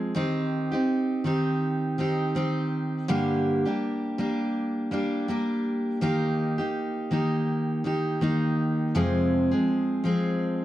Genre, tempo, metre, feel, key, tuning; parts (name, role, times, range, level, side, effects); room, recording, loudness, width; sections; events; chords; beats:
pop; 82 BPM; 4/4; swing 55% on 16ths; Eb major; A4 = 441 Hz
picked steel-string acoustic guitar; solo; 0.0-10.6 s; F2 to Ab4; -24 LUFS; equal
studio ambience; dry, close 1970s-style studio recording; -24 LUFS; side -14 dB against mid
0.0-10.6 A section
0.2 Cm/Eb; 3.1 Gm; 6.0 Eb; 9.0 Fm
| 0.16 0.89 1.62 2.36 | 3.09 3.82 4.56 5.29 | 6.02 6.75 7.49 8.22 | 8.95 9.68 10.42